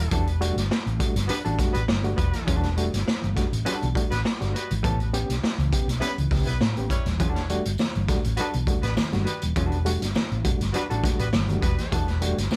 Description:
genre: funk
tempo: 102 BPM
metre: 4/4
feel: straight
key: E dorian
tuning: A4 = 440 Hz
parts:
  - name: dark horn section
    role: second line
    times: 0.0-12.0 s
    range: G3 to C#5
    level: -36 LUFS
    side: equal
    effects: tape echo
  - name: barky reed electric piano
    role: stabs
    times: 0.0-12.6 s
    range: A2 to G4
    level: -34 LUFS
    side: equal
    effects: overdrive, fast tremolo
  - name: hollow-body short-scale fingered electric bass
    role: bass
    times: 0.0-12.6 s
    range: D#1 to A2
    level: -28 LUFS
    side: equal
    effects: none
  - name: vintage hollow-body jazz guitar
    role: accompaniment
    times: 0.1-12.1 s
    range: G3 to B4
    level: -32 LUFS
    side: equal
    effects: none
  - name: raw garage drum kit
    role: drums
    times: 0.1-12.6 s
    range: hi-hat, kick drum, snare drum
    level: -28 LUFS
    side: equal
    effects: none
  - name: congas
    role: percussion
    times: 7.2-12.6 s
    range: none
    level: -38 LUFS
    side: equal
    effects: none
  - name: tambourine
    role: percussion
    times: 7.8-12.6 s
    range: none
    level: -45 LUFS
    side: equal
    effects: none
room: light reverb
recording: none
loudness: -25 LUFS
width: mono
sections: 0.0-12.6 A section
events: none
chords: 0.0 Em11; 4.8 A9; 7.2 Em11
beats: | 0.12 0.71 1.30 1.89 | 2.48 3.07 3.66 4.25 | 4.84 5.43 6.02 6.61 | 7.20 7.79 8.38 8.97 | 9.56 10.15 10.74 11.33 | 11.92 12.51

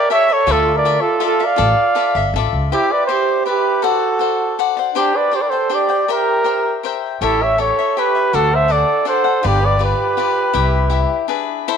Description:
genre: mexican folk, mariachi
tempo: 161 BPM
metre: 3/4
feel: straight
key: C major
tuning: A4 = 440 Hz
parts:
  - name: mellow trumpet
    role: melody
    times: 0.0-11.3 s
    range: G4 to F5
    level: -17 LUFS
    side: equal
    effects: none
  - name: mellow trumpet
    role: second line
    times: 0.0-11.2 s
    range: D4 to D5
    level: -22 LUFS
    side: right 12 dB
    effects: none
  - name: cavaquinho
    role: accompaniment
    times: 0.0-11.8 s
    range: D4 to G5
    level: -20 LUFS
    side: left 12 dB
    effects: none
  - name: upright bass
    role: bass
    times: 0.5-2.7, 7.2-11.0 s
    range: G1 to D2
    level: -19 LUFS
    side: equal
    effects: none
room: moderate plate reverb, RT60 2.8 s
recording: 1960s-style stereo with parts hard left and right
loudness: -14 LUFS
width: side -7 dB against mid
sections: 0.0-2.7 A section; 2.7-11.7 B section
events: break 11.3-11.7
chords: 0.5 Dmadd9; 2.7 Cadd9; 3.8 D7; 5.0 Gsus4/D; 6.1 C7; 7.2 A7; 8.3 D; 9.4 G7; 10.5 C; 11.3 E7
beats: 0.12 | 0.49 0.85 1.22 | 1.59 1.97 2.34 | 2.72 3.10 3.47 | 3.84 4.21 4.59 | 4.96 5.33 5.70 | 6.07 6.45 6.83 | 7.20 7.58 7.96 | 8.33 8.70 9.07 | 9.44 9.81 10.18 | 10.55 10.92 11.29 | 11.67

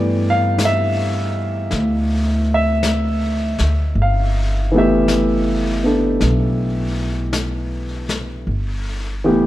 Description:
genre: jazz ballad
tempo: 53 BPM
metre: 4/4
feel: swing 68% on 8ths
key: G major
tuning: A4 = 440 Hz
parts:
  - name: warm baby grand piano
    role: accompaniment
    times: 0.0-9.5 s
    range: E3 to F5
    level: -19 LUFS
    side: equal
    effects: none
  - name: upright bass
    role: bass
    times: 0.0-9.5 s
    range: G1 to G2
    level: -19 LUFS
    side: equal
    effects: none
  - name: vintage brush drum kit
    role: drums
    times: 0.6-9.5 s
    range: brushed snare drum, hi-hat, snare drum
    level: -28 LUFS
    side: left 2 dB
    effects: none
room: light reverb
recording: dark, warm production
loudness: -16 LUFS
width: side -15 dB against mid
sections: 0.0-8.5 A section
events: none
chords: 0.0 G69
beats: 0.58 1.70 2.83 | 3.95 5.08 6.20 7.33 | 8.47

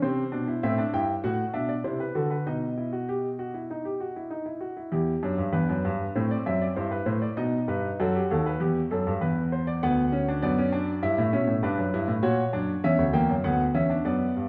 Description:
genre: classical, baroque-style 3-part fugue for grand piano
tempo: 98 BPM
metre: 4/4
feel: straight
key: E minor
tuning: A4 = 440 Hz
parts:
  - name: warm grand piano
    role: solo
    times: 0.0-14.5 s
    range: D2 to G5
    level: -27 LUFS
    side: equal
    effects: none
room: wet stone room reverb, RT60 1.4 s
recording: heard from further back in the room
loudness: -27 LUFS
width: mono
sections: 0.0-4.9 A section; 4.9-14.5 B section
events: none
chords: 0.0 C; 1.2 F#m7b5/A; 2.5 B; 4.9 Em; 6.2 Am; 7.4 B7; 8.6 Em; 9.8 Bm/D; 11.0 Em/G; 12.2 F#7; 13.4 Bm/D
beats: | 0.03 0.64 1.24 1.85 | 2.46 3.08 3.69 4.32 | 4.93 5.55 6.16 6.77 | 7.38 8.00 8.60 9.21 | 9.81 10.41 11.02 11.62 | 12.22 12.83 13.44 14.05

